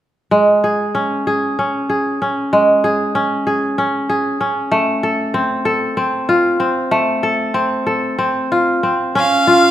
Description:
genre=contemporary instrumental, contemporary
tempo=190 BPM (eighths)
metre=7/8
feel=straight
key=unclear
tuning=A4 = 441 Hz
part: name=kora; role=arpeggios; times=0.3-9.7 s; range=Ab3 to A4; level=-14 LUFS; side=equal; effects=none
part: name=clear violin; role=melody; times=9.2-9.7 s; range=F5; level=-13 LUFS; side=right 2 dB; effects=none
room=moderate recital hall reverb, RT60 1.6 s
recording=minimal, uncompressed stereo recording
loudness=-14 LUFS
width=side -12 dB against mid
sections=0.3-9.2 A section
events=none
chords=0.3 Db5; 4.7 F; 9.2 Db

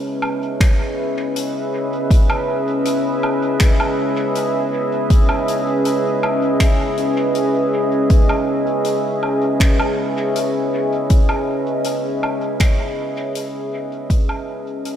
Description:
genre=ambient dub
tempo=80 BPM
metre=4/4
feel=straight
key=C# minor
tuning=A4 = 438 Hz
part: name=deep dark ambient pad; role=sustained chords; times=0.0-15.0 s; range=C#4 to E5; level=-18 LUFS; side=equal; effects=chorus, built-in reverb
part: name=soft-mallet drum kit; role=drums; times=0.2-15.0 s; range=finger snaps, hi-hat, woodblock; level=-27 LUFS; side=equal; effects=small room reverb, dub echo
part: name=electronic kick drum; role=drums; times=0.6-14.3 s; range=none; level=-14 LUFS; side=equal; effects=overdrive, small room reverb
room=moderate lush hall reverb, RT60 3.1 s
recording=dreamy mix soaked in reverb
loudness=-16 LUFS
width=side -10 dB against mid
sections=0.0-15.0 A section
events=fade-out 12.1-15.0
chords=0.0 C#m7

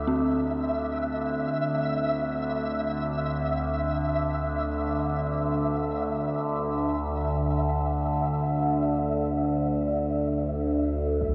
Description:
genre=dark ambient drone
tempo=free time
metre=none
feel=none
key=D minor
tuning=A4 = 440 Hz
part: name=dark detuned synth bell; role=arpeggios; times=0.0-6.7 s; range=C4 to A4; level=-34 LUFS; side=equal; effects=chorus, tape echo, shimmer reverb
part: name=overtone-sweeping drone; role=drone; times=0.0-11.3 s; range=D2 to D3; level=-29 LUFS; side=equal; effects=chorus, built-in reverb, phaser
part: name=flickering grainy texture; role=texture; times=0.0-11.2 s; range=E5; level=-34 LUFS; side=equal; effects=built-in reverb, shimmer reverb
part: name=impact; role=percussion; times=11.2-11.3 s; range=none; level=-33 LUFS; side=equal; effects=low-pass filter on sfx
room=wet cathedral reverb, RT60 5.2 s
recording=dark, warm production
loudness=-27 LUFS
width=mono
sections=0.0-11.2 A section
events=fade-in on synth drone 0.0-11.2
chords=0.0 Dm7; 2.3 Dsus2

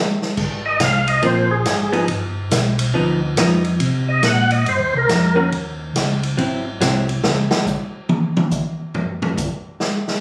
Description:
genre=soul jazz organ trio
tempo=140 BPM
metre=4/4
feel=swing 64% on 8ths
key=Ab major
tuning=A4 = 439 Hz
part: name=swinging big-band drum kit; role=drums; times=0.2-10.1 s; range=crash cymbal, hi-hat, kick drum, ride cymbal, snare drum, toms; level=-23 LUFS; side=equal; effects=none
part: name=mellow tonewheel organ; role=bass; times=0.4-7.5 s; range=G1 to C3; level=-23 LUFS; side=equal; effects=slow rotary speaker
part: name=percussive tonewheel organ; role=melody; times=0.7-5.5 s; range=Ab4 to Gb5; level=-21 LUFS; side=equal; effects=slow rotary speaker, overdrive, chorus vibrato
part: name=vintage hollow-body jazz guitar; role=accompaniment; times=1.2-7.1 s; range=Eb3 to Gb4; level=-22 LUFS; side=equal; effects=none
room=moderate club reverb, RT60 0.7 s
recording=recorded on a phone in the room, studio reverb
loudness=-19 LUFS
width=mono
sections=0.4-10.2 A section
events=tonewheel organ solo 0.0-10.2; drum solo 7.2-10.2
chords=0.4 Ab69; 2.1 G7b13; 3.8 Cm7; 5.5 Dbsus2; 6.4 Abaug7; 7.2 N.C.

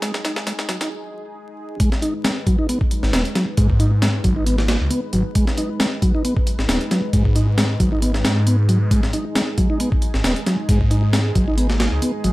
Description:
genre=breakbeat, breaks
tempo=135 BPM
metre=4/4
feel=swing 54% on 16ths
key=G# minor pentatonic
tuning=A4 = 441 Hz
part: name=dark analog pad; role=sustained chords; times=0.0-12.3 s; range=G#3 to B4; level=-29 LUFS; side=equal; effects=chorus, sidechain pumping
part: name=mellow tonewheel organ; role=riff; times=0.0-12.3 s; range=F#3 to D#4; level=-23 LUFS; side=equal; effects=chorus vibrato, digital delay
part: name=breakbeat sampler-style drum kit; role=drums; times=0.0-12.3 s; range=hi-hat, kick drum, snare drum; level=-20 LUFS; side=equal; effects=high-pass filter on snare, studio reverb, high-pass filter on hats, high-pass filter on kick
part: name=phased detuned saw bass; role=bass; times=3.0-12.3 s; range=D#1 to G#2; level=-19 LUFS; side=equal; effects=phaser
room=digital ambience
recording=vinyl crackle, high-pass filter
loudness=-16 LUFS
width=side -19 dB against mid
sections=0.0-1.8 A section; 1.8-12.3 B section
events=build-up 0.0-1.8; drum fill 0.0-0.9; filter sweep on tonewheel organ 0.0-1.8; filter sweep 0.0-1.8; break 0.9-1.8; drop 1.8-12.3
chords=0.0 G#5; 1.8 G#m

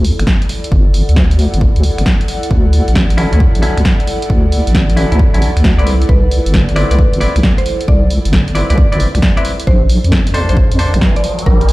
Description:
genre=UK garage, two-step garage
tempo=134 BPM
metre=4/4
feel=swing 67% on 16ths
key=G major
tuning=A4 = 440 Hz
part: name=deep soft wobble bass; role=bass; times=0.0-11.7 s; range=G1 to F2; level=-12 LUFS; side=equal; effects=chorus, sidechain pumping
part: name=punchy analog drum machine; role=drums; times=0.0-11.7 s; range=finger snaps, hi-hat, snare drum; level=-19 LUFS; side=equal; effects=none
part: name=airy breathy pad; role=texture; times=0.0-11.7 s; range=E4 to G5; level=-24 LUFS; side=equal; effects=chorus, sidechain pumping
part: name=electronic kick drum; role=drums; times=0.3-11.6 s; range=none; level=-13 LUFS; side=equal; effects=none
part: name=semi-hollow electric guitar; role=stabs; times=3.2-10.9 s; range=D3 to D5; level=-20 LUFS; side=left 1 dB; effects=low-pass filter, digital delay
part: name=mallet-like synth pluck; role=melody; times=6.1-11.7 s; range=Bb4 to E5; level=-23 LUFS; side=right 1 dB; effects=chorus, digital delay
part: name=riser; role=sound effects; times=10.2-11.7 s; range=none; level=-24 LUFS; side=equal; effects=none
room=digital ambience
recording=played on a big sound system in a bare room, large studio reverb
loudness=-10 LUFS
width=side -19 dB against mid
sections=0.0-11.7 A section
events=riser 10.2-11.7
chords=0.0 Gsus2; 2.3 Dmaj9; 5.9 Cmaj9; 9.7 Bbmaj9

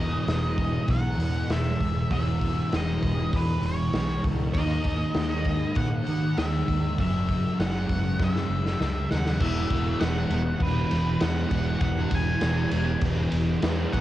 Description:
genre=rock, shoegaze and dream pop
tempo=99 BPM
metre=4/4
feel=straight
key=unclear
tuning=A4 = 440 Hz
part: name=octave-fuzz lead guitar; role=melody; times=0.0-14.0 s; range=B4 to G#5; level=-33 LUFS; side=left 1 dB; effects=distortion, cassette tape, tape echo
part: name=fuzz guitar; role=riff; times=0.0-14.0 s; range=E2 to D#4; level=-28 LUFS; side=equal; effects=distortion, ensemble chorus, cassette tape
part: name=vintage muted fingered electric bass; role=bass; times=0.0-14.0 s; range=E1 to D#3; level=-28 LUFS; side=equal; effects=transformer saturation
part: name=raw garage drum kit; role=drums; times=0.3-14.0 s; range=crash cymbal, hi-hat, kick drum, ride cymbal, snare drum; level=-29 LUFS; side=equal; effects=cassette tape
room=small room ambience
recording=home recording on cassette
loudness=-23 LUFS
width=side -14 dB against mid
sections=0.0-9.4 A section; 9.4-14.0 B section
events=drum fill 8.2-9.4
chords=0.0 E5; 4.5 D#m; 7.0 F#5; 9.4 Esus2

